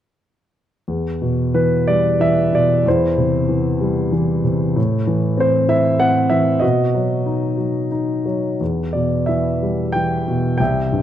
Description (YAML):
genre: classical, lyrical solo piano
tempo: 87-98 BPM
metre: 3/4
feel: rubato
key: E minor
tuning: A4 = 440 Hz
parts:
  - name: dark baby grand piano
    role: solo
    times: 0.9-11.0 s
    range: C2 to G5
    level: -16 LUFS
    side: equal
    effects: none
room: moderate scoring stage reverb, RT60 1.8 s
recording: dark, warm production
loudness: -16 LUFS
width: side -10 dB against mid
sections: 0.9-11.0 A section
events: none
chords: 0.9 Em; 2.9 C/E; 4.8 Am; 6.6 B; 8.6 Em